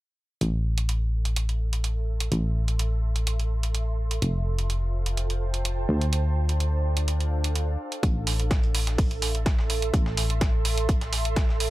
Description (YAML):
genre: piano house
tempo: 126 BPM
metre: 4/4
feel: straight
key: A minor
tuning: A4 = 445 Hz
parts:
  - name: solid FM bass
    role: bass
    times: 0.4-11.7 s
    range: F1 to D2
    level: -25 LUFS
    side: equal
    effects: sidechain pumping
  - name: electronic hi-hat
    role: drums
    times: 0.4-11.7 s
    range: none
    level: -31 LUFS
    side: right 3 dB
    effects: none
  - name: ethereal airy pad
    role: texture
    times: 1.6-11.7 s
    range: D4 to C6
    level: -34 LUFS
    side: right 3 dB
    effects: ensemble chorus, built-in reverb, sidechain pumping
  - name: dusty soul sampler-style drum kit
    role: drums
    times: 8.0-11.7 s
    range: hi-hat, snare drum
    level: -38 LUFS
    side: equal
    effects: sidechain pumping on hats, high-pass filter on hats, high-pass filter on snare, high-pass filter on room
  - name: electronic kick drum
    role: drums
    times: 8.0-11.5 s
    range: none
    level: -24 LUFS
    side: equal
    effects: none
room: little or no reverb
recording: none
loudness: -23 LUFS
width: side -17 dB against mid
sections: 0.4-11.7 A section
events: fade-in on ambient pad 0.4-11.7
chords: 0.4 Am; 4.2 Fmaj7; 5.9 Dm7; 8.0 Am